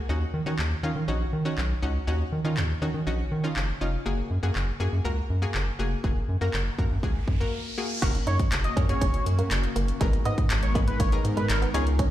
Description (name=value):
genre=dance-pop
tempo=121 BPM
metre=4/4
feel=straight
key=F# major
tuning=A4 = 440 Hz
part: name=analog pluck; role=accompaniment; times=0.0-12.1 s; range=A#3 to B4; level=-33 LUFS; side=left 2 dB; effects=chorus, sidechain pumping
part: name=round analog bass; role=bass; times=0.1-12.1 s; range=E#1 to D#3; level=-26 LUFS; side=equal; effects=sidechain pumping
part: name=house drum kit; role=drums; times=0.6-12.1 s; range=crash cymbal, handclaps, hi-hat, kick drum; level=-28 LUFS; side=equal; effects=none
part: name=riser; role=sound effects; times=6.7-8.0 s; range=none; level=-38 LUFS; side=equal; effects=none
part: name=airy breathy pad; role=sustained chords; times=8.0-12.1 s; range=C#3 to E#5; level=-33 LUFS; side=equal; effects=chorus, sidechain pumping
part: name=direct-recorded clean electric guitar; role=riff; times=8.0-12.1 s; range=G#3 to F#4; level=-33 LUFS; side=right 5 dB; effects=lush chorus
part: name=octave-doubled lead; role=melody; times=8.3-11.8 s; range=A#4 to D#5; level=-33 LUFS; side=equal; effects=chorus, sidechain pumping, dub echo
room=little or no reverb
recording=played on a big sound system in a bare room, large studio reverb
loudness=-24 LUFS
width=side -13 dB against mid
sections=0.0-8.0 A section; 8.0-12.1 B section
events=riser 6.7-8.0; break 7.5-8.0; drop 8.0-12.1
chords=0.1 D#m7; 4.1 F#add9; 8.0 F#; 10.0 G#madd9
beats=| 0.09 0.59 1.08 1.58 | 2.07 2.57 3.07 3.56 | 4.06 4.55 5.05 5.54 | 6.04 6.54 7.03 7.53 | 8.03 8.52 9.02 9.51 | 10.01 10.50 11.00 11.50 | 11.99